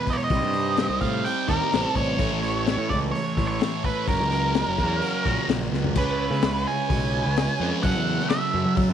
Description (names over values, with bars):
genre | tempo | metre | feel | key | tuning
psychedelic rock | 127 BPM | 4/4 | straight | unclear | A4 = 439 Hz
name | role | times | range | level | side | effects
octave-fuzz lead guitar | melody | 0.0-8.7 s | A#4 to G#5 | -27 LUFS | right 2 dB | distortion, slapback echo
hand-pumped harmonium | sustained chords | 0.0-8.9 s | Eb4 to C#5 | -36 LUFS | right 12 dB | none
thick fuzz guitar | riff | 0.0-8.9 s | E2 to C#4 | -27 LUFS | right 1 dB | distortion, phaser
crunchy breakbeat drum kit | drums | 0.1-8.9 s | crash cymbal, hi-hat, kick drum, snare drum, toms | -27 LUFS | left 4 dB | none
fuzz picked electric bass | bass | 0.3-8.9 s | F#1 to F#3 | -27 LUFS | equal | overdrive
room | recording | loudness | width
light reverb, studio reverb | 1960s-style stereo | -21 LUFS | side -9 dB against mid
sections
0.0-6.0 A section; 6.0-8.9 B section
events
drum fill 5.7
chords
0.3 Cm; 2.2 A; 4.1 F#; 6.0 C#m7; 7.8 F#m7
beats
| 0.30 0.78 1.25 1.72 | 2.19 2.66 3.13 3.60 | 4.08 4.55 5.02 5.49 | 5.96 6.43 6.90 7.37 | 7.84 8.31 8.78